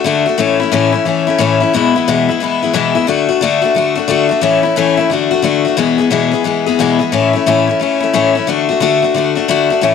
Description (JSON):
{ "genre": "rock", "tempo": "178 BPM", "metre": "4/4", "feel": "swing 64% on 8ths", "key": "A major", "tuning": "A4 = 440 Hz", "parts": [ { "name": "picked steel-string acoustic guitar", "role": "solo", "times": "0.0-9.9 s", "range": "E2 to G#4", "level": "-11 LUFS", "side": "left 6 dB", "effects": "none" } ], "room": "moderate echo chamber reverb, RT60 1.5 s, small room ambience", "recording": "none", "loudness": "-11 LUFS", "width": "side -6 dB against mid", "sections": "0.0-7.1 A section; 7.1-9.9 A section", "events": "none", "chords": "0.4 A; 1.7 E; 3.1 D; 4.4 A; 5.1 D; 5.8 E; 7.1 A; 8.5 D" }